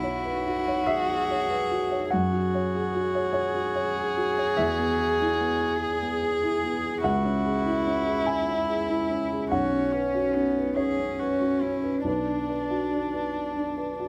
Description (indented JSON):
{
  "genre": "neoclassical piano and strings",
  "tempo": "48 BPM (dotted quarters)",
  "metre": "6/8",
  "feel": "rubato",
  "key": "B dorian",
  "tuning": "A4 = 440 Hz",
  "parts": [
    { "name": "dark violin", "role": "melody", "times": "0.0-14.1 s", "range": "C#4 to G#4", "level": "-30 LUFS", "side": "equal", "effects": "none" },
    { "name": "clear cello", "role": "second line", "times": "0.0-14.0 s", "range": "B3 to G#4", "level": "-35 LUFS", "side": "equal", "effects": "none" },
    { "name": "dark upright piano", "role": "accompaniment", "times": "0.0-14.1 s", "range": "B1 to G#5", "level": "-30 LUFS", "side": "equal", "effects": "none" }
  ],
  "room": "light reverb",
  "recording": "close, detailed microphones",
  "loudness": "-26 LUFS",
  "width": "mono",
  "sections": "0.0-14.1 A section",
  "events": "none",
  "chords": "0.0 Bsus2; 2.1 F#sus2; 4.6 E; 7.0 C#m; 9.5 Bsus2; 12.1 Bm"
}